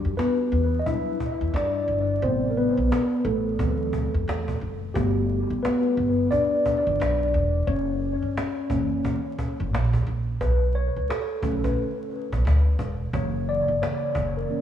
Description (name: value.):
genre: hip hop, jazz-hop.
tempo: 88 BPM.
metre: 4/4.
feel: swing 62% on 16ths.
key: B minor.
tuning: A4 = 438 Hz.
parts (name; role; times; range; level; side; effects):
mellow tine electric piano; accompaniment; 0.0-14.6 s; C3 to E5; -24 LUFS; left 1 dB; medium stereo tremolo, dub echo.
upright bass; bass; 0.0-14.4 s; E1 to G2; -25 LUFS; equal; none.
cajon; drums; 0.2-14.6 s; none; -32 LUFS; right 1 dB; none.
room: light reverb.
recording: echo-heavy mix, vinyl crackle.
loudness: -22 LUFS.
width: side -10 dB against mid.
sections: 0.0-10.4 A section; 10.4-14.6 B section.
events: tine electric piano solo 0.0-10.4, 10.4-14.6.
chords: 0.0 Em9; 2.2 Am7; 3.6 D7; 5.0 Gmaj9; 7.7 F#7; 10.4 Bm9; 13.1 F#7.